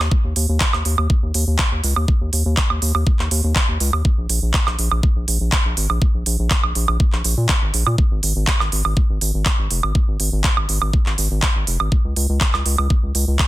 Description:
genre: progressive house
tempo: 122 BPM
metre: 4/4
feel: straight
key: unclear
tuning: A4 = 440 Hz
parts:
  - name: round analog bass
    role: bass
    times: 0.0-13.4 s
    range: F1 to Bb2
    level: -19 LUFS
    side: equal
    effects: sidechain pumping
  - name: pop drum kit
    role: drums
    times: 0.0-13.5 s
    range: handclaps, hi-hat, woodblock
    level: -21 LUFS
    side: right 3 dB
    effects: sidechain pumping on perc, sidechain pumping on hats
  - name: electronic kick drum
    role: drums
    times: 0.1-13.5 s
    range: none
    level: -17 LUFS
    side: equal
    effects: none
room: digital ambience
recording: dense, heavily limited modern master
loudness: -16 LUFS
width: side -16 dB against mid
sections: 0.0-13.5 A section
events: none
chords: none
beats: | 0.12 0.61 1.10 1.59 | 2.08 2.57 3.07 3.56 | 4.05 4.54 5.03 5.53 | 6.02 6.51 7.00 7.49 | 7.98 8.47 8.97 9.46 | 9.95 10.44 10.93 11.43 | 11.92 12.41 12.90 13.39

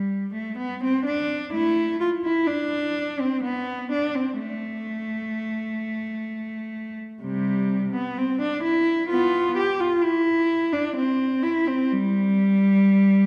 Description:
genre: classical, baroque-style suite movement for unaccompanied cello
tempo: 63 BPM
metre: 4/4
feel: rubato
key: unclear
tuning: A4 = 441 Hz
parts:
  - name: rich cello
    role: solo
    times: 0.0-13.3 s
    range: C3 to G4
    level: -24 LUFS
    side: equal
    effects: none
room: wet concert hall reverb, RT60 2.0 s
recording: recorded in a church or concert hall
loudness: -24 LUFS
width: mono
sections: 0.0-13.3 A section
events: none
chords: none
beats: 0.57 1.52 2.48 | 3.44 4.39 5.34 6.29 | 7.23 8.17 9.10 10.03 | 10.96 11.91 12.84

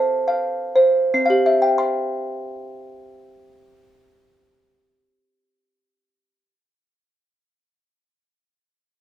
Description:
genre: classical, lullaby for music box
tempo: free time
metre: none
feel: none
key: C major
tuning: A4 = 440 Hz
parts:
  - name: music box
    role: solo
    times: 0.0-6.6 s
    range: C4 to C6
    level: -17 LUFS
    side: right 1 dB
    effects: none
room: light reverb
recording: dark, warm production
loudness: -16 LUFS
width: side -11 dB against mid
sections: 0.0-1.8 A section; 1.8-8.2 B section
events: slowing down 0.0-1.8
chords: 0.0 F/C; 1.8 C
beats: free time

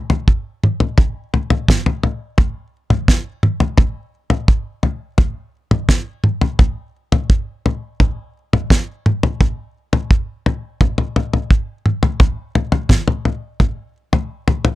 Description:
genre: rock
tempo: 86 BPM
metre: 4/4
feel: straight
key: none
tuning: none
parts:
  - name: damped 70s drum kit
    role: drums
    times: 0.1-14.8 s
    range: kick drum, snare drum, toms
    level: -14 LUFS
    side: equal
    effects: none
room: little or no reverb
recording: none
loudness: -15 LUFS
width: side -16 dB against mid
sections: 0.0-13.6 A section; 13.6-14.8 B section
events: none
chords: none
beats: 0.28 0.98 1.68 | 2.38 3.08 3.79 4.49 | 5.19 5.89 6.59 7.29 | 7.99 8.70 9.39 10.10 | 10.79 11.49 12.19 12.89 | 13.59 14.29

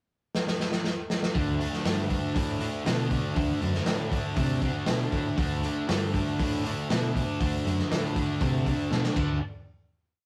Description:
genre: garage rock duo or trio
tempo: 119 BPM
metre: 4/4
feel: straight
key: unclear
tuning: A4 = 440 Hz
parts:
  - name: crunchy breakbeat drum kit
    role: drums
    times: 0.3-9.3 s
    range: crash cymbal, hi-hat, kick drum, snare drum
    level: -32 LUFS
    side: equal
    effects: none
  - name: fuzz guitar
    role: riff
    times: 1.3-9.4 s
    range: D3 to D4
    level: -32 LUFS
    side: equal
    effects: distortion
  - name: growling picked electric bass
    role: bass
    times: 1.4-9.4 s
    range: D2 to C3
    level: -32 LUFS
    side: equal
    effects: overdrive, tube saturation
room: light reverb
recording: rough rehearsal-room recording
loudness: -28 LUFS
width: mono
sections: 0.0-1.3 pickup bar; 1.3-9.4 verse; 9.4-10.3 final hit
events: drum fill 0.3-1.3, 8.9-9.4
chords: 0.0 N.C.; 1.3 D5; 9.4 N.C.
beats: 0.34 0.84 | 1.35 1.85 2.35 2.86 | 3.36 3.87 4.37 4.88 | 5.38 5.89 6.39 6.90 | 7.40 7.90 8.41 8.91

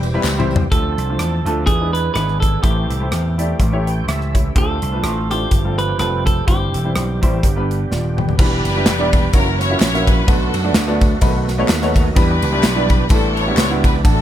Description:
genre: uptempo gospel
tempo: 126 BPM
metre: 4/4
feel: swing 56% on 8ths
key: unclear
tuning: A4 = 440 Hz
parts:
  - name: clear studio string section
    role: melody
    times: 0.0-0.2, 8.4-14.2 s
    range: C#4 to C#5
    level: -22 LUFS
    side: left 3 dB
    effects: none
  - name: clear baby grand piano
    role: accompaniment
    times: 0.0-14.2 s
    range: G2 to G5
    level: -22 LUFS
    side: equal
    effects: none
  - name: overdriven tonewheel organ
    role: sustained chords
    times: 0.0-14.2 s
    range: C#3 to G5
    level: -26 LUFS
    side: right 4 dB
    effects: slow rotary speaker, chorus vibrato
  - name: vintage slap bass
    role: bass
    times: 0.0-14.2 s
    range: Eb1 to F#2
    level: -20 LUFS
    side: equal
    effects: none
  - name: modern studio drum kit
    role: drums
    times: 0.0-14.2 s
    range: crash cymbal, hi-hat, kick drum, ride cymbal, rim click, snare drum, toms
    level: -17 LUFS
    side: equal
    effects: none
  - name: tambourine and handclaps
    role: percussion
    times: 0.0-0.6, 8.4-14.2 s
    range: none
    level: -30 LUFS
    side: left 2 dB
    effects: none
  - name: clean electric guitar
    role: melody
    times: 0.7-6.9 s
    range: G4 to B4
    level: -23 LUFS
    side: right 2 dB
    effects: tape echo
room: little or no reverb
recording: none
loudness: -14 LUFS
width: side -11 dB against mid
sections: 0.7-8.4 A section; 8.4-14.2 B section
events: drum fill 0.2-0.7, 7.9-8.4; tonewheel organ fill 3.6-4.6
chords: 0.0 Cmaj7; 0.7 Dm7; 1.7 E7; 2.6 Am7; 3.6 A7; 4.6 Dm7; 5.5 G9sus4; 6.5 C; 7.4 G; 8.4 Em7; 9.3 F#7; 10.3 Bm7; 11.2 B7; 12.2 Em7; 13.1 A9sus4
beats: 0.24 | 0.71 1.19 1.67 2.15 | 2.63 3.12 3.60 4.08 | 4.56 5.04 5.52 6.00 | 6.48 6.96 7.43 7.91 | 8.39 8.86 9.33 9.81 | 10.28 10.75 11.22 11.69 | 12.16 12.63 13.10 13.57 | 14.04

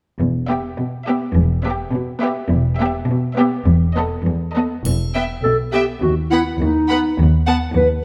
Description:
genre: cinematic, playful, whimsical film cue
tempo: 103 BPM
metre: 2/4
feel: straight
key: E minor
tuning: A4 = 442 Hz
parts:
  - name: rich studio double bass section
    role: bass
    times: 0.2-8.0 s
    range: E1 to D#2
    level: -24 LUFS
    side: equal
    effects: none
  - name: warm studio cello section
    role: bass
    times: 0.2-8.0 s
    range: D#2 to B2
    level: -22 LUFS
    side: equal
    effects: none
  - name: rich studio violin section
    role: melody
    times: 0.5-7.6 s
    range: D#5 to B5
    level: -32 LUFS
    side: equal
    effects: none
  - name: rich studio violin section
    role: second line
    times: 0.5-7.5 s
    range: G4 to F#5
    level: -29 LUFS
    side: equal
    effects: none
  - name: rich studio viola section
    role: accompaniment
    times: 0.5-7.6 s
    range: B3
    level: -24 LUFS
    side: equal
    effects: none
  - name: triangle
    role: percussion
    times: 4.9-6.0 s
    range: none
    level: -37 LUFS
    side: equal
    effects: none
  - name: mellow clarinet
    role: second line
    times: 5.4-7.9 s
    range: D#4 to B4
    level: -20 LUFS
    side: equal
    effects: none
room: light reverb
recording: none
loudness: -18 LUFS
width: mono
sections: 0.2-4.9 A section; 4.9-8.0 B section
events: none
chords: 0.2 Em; 6.0 B/D#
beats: | 0.19 0.78 | 1.36 1.93 | 2.50 3.08 | 3.66 4.26 | 4.86 5.44 | 6.02 6.60 | 7.18 7.75

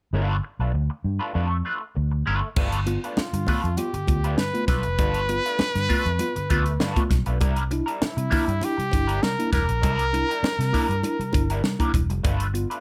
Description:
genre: funk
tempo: 99 BPM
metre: 4/4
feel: straight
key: G mixolydian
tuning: A4 = 440 Hz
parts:
  - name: electric guitar at the edge of break-up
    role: accompaniment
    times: 0.1-12.8 s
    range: G3 to B4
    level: -32 LUFS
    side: equal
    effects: wah, plate reverb
  - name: vintage muted fingered electric bass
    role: bass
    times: 0.1-12.6 s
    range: E1 to C3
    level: -28 LUFS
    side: equal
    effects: none
  - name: mellow tine electric piano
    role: stabs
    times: 2.6-12.7 s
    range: G2 to F4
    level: -32 LUFS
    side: equal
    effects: slapback echo
  - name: crisp fusion drum kit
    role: drums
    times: 2.6-12.8 s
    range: crash cymbal, hi-hat, kick drum, snare drum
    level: -28 LUFS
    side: equal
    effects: none
  - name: congas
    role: percussion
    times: 2.6-12.4 s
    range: none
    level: -34 LUFS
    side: equal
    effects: none
  - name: breathy trumpet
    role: melody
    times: 3.2-11.9 s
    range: E4 to B4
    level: -29 LUFS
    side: equal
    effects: plate reverb
room: light reverb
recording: none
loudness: -24 LUFS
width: mono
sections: 0.1-2.6 A section; 2.6-12.8 B section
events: none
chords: 0.1 G9; 7.4 C9; 12.2 G9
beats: | 0.13 0.74 1.35 1.96 | 2.57 3.17 3.78 4.38 | 4.99 5.60 6.20 6.81 | 7.41 8.02 8.62 9.22 | 9.83 10.43 11.04 11.64 | 12.25

